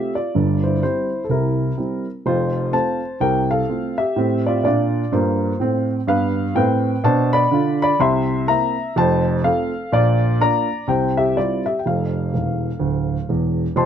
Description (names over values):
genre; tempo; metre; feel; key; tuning
jazz, stride piano; 125 BPM; 4/4; swing 60% on 8ths; F major; A4 = 437 Hz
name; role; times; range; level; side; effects
warm baby grand piano; solo; 0.0-13.9 s; D1 to C6; -17 LUFS; equal; none
room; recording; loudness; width
light reverb; close, detailed microphones; -17 LUFS; side -9 dB against mid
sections
0.0-13.8 A section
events
grand piano fill 12.3-13.8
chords
0.3 C7/G; 2.3 F; 4.2 F/A; 6.1 G7; 8.0 C7; 9.0 F; 9.9 Bb; 10.9 C; 11.8 F